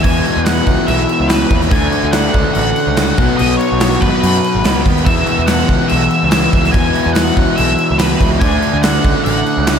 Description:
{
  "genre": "classic rock",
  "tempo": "143 BPM",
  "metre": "4/4",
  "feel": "straight",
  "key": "unclear",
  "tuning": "A4 = 438 Hz",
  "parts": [
    { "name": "octave-fuzz lead guitar", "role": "melody", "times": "0.0-9.8 s", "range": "B4 to G#5", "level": "-19 LUFS", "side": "right 1 dB", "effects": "distortion, slapback echo" },
    { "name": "overdriven electric guitar", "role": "riff", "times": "0.0-9.8 s", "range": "E2 to D4", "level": "-22 LUFS", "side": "right 9 dB", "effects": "none" },
    { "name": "overdriven semi-hollow guitar", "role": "riff", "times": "0.0-9.8 s", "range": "E2 to D4", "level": "-18 LUFS", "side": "left 10 dB", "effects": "none" },
    { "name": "raw garage guitar", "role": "riff", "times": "0.0-9.8 s", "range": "E2 to D4", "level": "-22 LUFS", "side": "right 2 dB", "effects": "overdrive, slapback echo" },
    { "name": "fuzz picked electric bass", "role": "bass", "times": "0.0-9.8 s", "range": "G#1 to F#2", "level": "-18 LUFS", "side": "equal", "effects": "overdrive" },
    { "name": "gated 80s drum kit", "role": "drums", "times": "0.0-9.8 s", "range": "crash cymbal, kick drum, snare drum", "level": "-16 LUFS", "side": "equal", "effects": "none" },
    { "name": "group handclap", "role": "percussion", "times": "0.3-9.8 s", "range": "none", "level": "-34 LUFS", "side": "right 4 dB", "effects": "none" }
  ],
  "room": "moderate lush hall reverb, RT60 1.8 s, small room reverb",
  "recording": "big arena sound",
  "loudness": "-11 LUFS",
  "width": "side -7 dB against mid",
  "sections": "0.0-9.8 A section",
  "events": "none",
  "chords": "0.0 E; 1.7 D; 3.2 B5; 5.1 E5; 8.4 D"
}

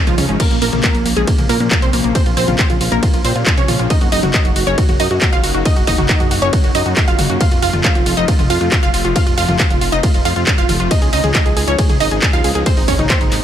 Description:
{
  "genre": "uplifting trance",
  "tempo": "137 BPM",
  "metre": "4/4",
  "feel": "straight",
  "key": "Bb minor",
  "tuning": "A4 = 441 Hz",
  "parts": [
    { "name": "wide unison pluck", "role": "melody", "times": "0.0-13.4 s", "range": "F3 to F5", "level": "-19 LUFS", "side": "right 1 dB", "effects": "auto-pan, sidechain pumping, ping-pong delay" },
    { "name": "wide unison pluck", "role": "second line", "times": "0.0-13.4 s", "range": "Bb3 to F5", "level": "-25 LUFS", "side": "equal", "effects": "sidechain pumping, ping-pong delay" },
    { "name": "supersaw pad", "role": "sustained chords", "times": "0.0-13.3 s", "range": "C3 to F4", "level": "-24 LUFS", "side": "equal", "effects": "phaser, sidechain pumping" },
    { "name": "fat analog bass", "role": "bass", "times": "0.1-13.4 s", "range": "F1 to Bb2", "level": "-20 LUFS", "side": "equal", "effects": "sidechain pumping" },
    { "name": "punchy analog drum machine", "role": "drums", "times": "0.1-13.4 s", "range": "crash cymbal, handclaps, hi-hat, ride cymbal, toms", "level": "-20 LUFS", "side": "left 1 dB", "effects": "none" },
    { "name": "electronic kick drum", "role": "drums", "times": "0.4-13.2 s", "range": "none", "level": "-15 LUFS", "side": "equal", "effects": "none" }
  ],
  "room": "little or no reverb",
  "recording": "none",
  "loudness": "-12 LUFS",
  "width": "side -10 dB against mid",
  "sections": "0.0-13.4 A section",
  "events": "none",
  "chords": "0.4 Bbmadd9; 3.9 Gb6; 7.4 F; 10.9 Dbadd9; 12.7 Abadd9"
}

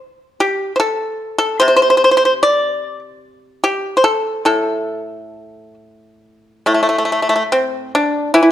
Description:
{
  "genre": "chinese traditional, Chinese solo plucked strings",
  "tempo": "66-76 BPM",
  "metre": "4/4",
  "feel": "rubato",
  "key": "A yu mode",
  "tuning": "A4 = 440 Hz",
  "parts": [
    { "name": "pipa", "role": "solo", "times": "0.4-8.5 s", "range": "A2 to D5", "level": "-13 LUFS", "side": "equal", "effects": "none" }
  ],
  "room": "light reverb",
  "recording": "dark, warm production",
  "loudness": "-14 LUFS",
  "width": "side -11 dB against mid",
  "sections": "0.0-6.7 A section; 6.7-8.5 B section",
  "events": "none",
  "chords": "none"
}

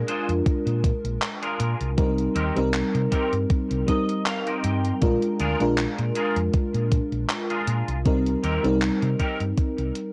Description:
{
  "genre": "vaporwave",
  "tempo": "79 BPM",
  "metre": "4/4",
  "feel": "swing 55% on 16ths",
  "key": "C minor",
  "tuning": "A4 = 440 Hz",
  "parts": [
    { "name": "FM electric piano with soft pad layer", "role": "accompaniment", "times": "0.0-10.1 s", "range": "G3 to Bb4", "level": "-27 LUFS", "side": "equal", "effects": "analog chorus, cassette tape, analog delay" },
    { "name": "hollow-body short-scale fingered electric bass", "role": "bass", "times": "0.0-9.9 s", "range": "Bb1 to C3", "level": "-29 LUFS", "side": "equal", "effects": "none" },
    { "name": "clean electric guitar", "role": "riff", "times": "0.1-9.6 s", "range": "C4 to G5", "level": "-34 LUFS", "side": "equal", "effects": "ensemble chorus, analog delay" },
    { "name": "gated 80s digital drum machine", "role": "drums", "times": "0.1-10.1 s", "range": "handclaps, hi-hat", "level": "-33 LUFS", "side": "equal", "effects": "gated reverb" },
    { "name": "electronic kick drum", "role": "drums", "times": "0.5-9.7 s", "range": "none", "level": "-25 LUFS", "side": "equal", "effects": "none" }
  ],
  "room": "little or no reverb",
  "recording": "dry, gritty hardware recording, cassette tape",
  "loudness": "-24 LUFS",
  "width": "mono",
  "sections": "0.0-10.1 A section",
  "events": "clean electric guitar fill 3.5-5.0; fade-out 9.1-10.1",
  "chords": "0.0 Bb7; 2.0 Cm7; 5.0 Bb7; 8.1 Cm7"
}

